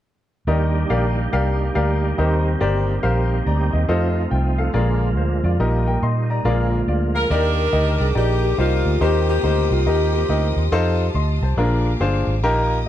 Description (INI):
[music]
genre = uptempo gospel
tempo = 140 BPM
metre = 4/4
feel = swing 64% on 8ths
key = Eb major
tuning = A4 = 441 Hz
[part]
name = clear grand piano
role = accompaniment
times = 0.5-12.9 s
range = Bb2 to C6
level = -23 LUFS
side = left 2 dB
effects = none
[part]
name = bright tonewheel organ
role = sustained chords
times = 0.5-7.3 s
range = D3 to G4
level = -26 LUFS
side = right 4 dB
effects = slow rotary speaker, chorus vibrato
[part]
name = vintage muted fingered electric bass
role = bass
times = 0.5-12.9 s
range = G1 to Bb2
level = -20 LUFS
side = equal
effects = none
[part]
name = bright saxophone section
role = melody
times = 7.1-10.7 s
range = Bb3 to Bb4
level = -24 LUFS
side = left 1 dB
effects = none
[part]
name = buzzing kalimba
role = melody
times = 7.2-10.5 s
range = F4 to Bb4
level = -25 LUFS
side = left 2 dB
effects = none
[part]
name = warm studio string section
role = sustained chords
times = 7.3-12.9 s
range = Eb5 to Eb6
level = -33 LUFS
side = left 1 dB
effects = none
[sound]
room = light reverb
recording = dark, warm production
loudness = -17 LUFS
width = side -12 dB against mid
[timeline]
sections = 0.5-7.3 A section; 7.3-12.9 B section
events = none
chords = 0.5 Ebmaj7; 2.2 Cm7; 3.9 F7; 4.7 Bb7; 5.6 Eb/Bb; 6.5 Bb7; 7.3 Ebmaj7; 9.0 Cm7; 10.7 F7; 11.6 Bb7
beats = | 0.47 0.90 1.33 1.75 | 2.18 2.61 3.04 3.46 | 3.89 4.32 4.74 5.17 | 5.60 6.02 6.45 6.88 | 7.30 7.73 8.16 8.59 | 9.01 9.44 9.87 10.29 | 10.72 11.15 11.58 12.00 | 12.43 12.86